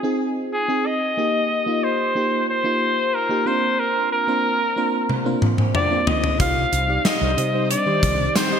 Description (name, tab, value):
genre	1980s-style pop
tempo	92 BPM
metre	4/4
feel	straight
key	unclear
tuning	A4 = 440 Hz
part	clear flugelhorn	melody	0.0-8.6 s	Ab4 to F5	-21 LUFS	left 1 dB	ping-pong delay
part	mellow FM electric piano	accompaniment	0.0-8.6 s	Eb3 to Eb5	-24 LUFS	right 1 dB	chorus
part	gated 80s drum kit	drums	5.1-8.5 s	hi-hat, kick drum, snare drum, tambourine, toms	-21 LUFS	equal	gated reverb
part	marimba with medium hard mallets	second line	5.7-8.6 s	C4 to F4	-30 LUFS	left 4 dB	ping-pong delay
part	string machine, violas	sustained chords	6.4-8.6 s	G3 to G4	-29 LUFS	left 2 dB	ensemble chorus
part	woody fretless electric bass	bass	6.4-8.3 s	C2 to C3	-24 LUFS	equal	none
part	mellow synth brass	stabs	7.2-8.6 s	G3 to C5	-28 LUFS	left 1 dB	chorus, ping-pong delay
room	moderate lush hall reverb, RT60 2.2 s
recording	bright 1980s-style digital production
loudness	-18 LUFS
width	side -7 dB against mid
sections	0.0-8.6 A section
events	drum fill 5.1-6.4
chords	0.0 Ab/C; 1.2 Eb; 3.5 Bbadd9; 6.4 Cm